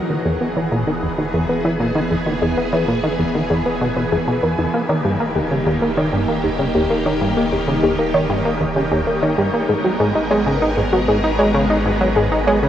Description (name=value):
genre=ambient, sequencer-driven space music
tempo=97 BPM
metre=4/4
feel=straight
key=G# minor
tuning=A4 = 445 Hz
part: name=phased string machine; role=sustained chords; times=0.0-12.7 s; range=D#3 to B4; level=-21 LUFS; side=equal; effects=ensemble chorus, phaser
part: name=soft round pluck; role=arpeggios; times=0.0-12.7 s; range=D#4 to G#5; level=-23 LUFS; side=left 1 dB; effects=chorus, auto-pan, analog delay
part: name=warm sub bass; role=bass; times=0.0-12.7 s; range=D#1 to G#1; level=-30 LUFS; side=equal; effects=none
part: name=plucky analog bass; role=riff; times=0.1-12.7 s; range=D#2 to D#4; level=-19 LUFS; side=equal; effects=analog delay
room=wet shimmer reverb, RT60 8.5 s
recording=worn, warbling old tape, cassette tape, warbly pitch drift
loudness=-16 LUFS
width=side -10 dB against mid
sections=0.0-12.7 A section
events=fade-in on sub bass 0.0-12.7; filter sweep on analog synth bass 0.0-12.7; filter sweep on synth arpeggio sound 0.0-12.7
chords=0.0 E; 4.7 D#; 9.7 G#madd9